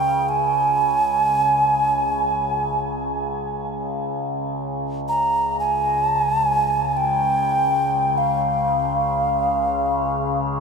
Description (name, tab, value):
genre	world meditative, free-time meditation music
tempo	free time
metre	none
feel	none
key	Db lydian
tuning	A4 = 440 Hz
part	mellow alto ocarina	melody	0.0-10.6 s	F5 to Bb5	-19 LUFS	right 1 dB	shimmer reverb, ping-pong delay
part	overtone-sweeping drone	drone	0.0-10.6 s	Db2 to Db3	-25 LUFS	left 1 dB	chorus, built-in reverb
part	koto	texture	0.0-5.4 s	none	barely audible	none	none
room	wet huge ambient reverb, RT60 4.4 s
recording	none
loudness	-18 LUFS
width	side -5 dB against mid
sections	0.0-10.6 A section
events	none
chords	none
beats	free time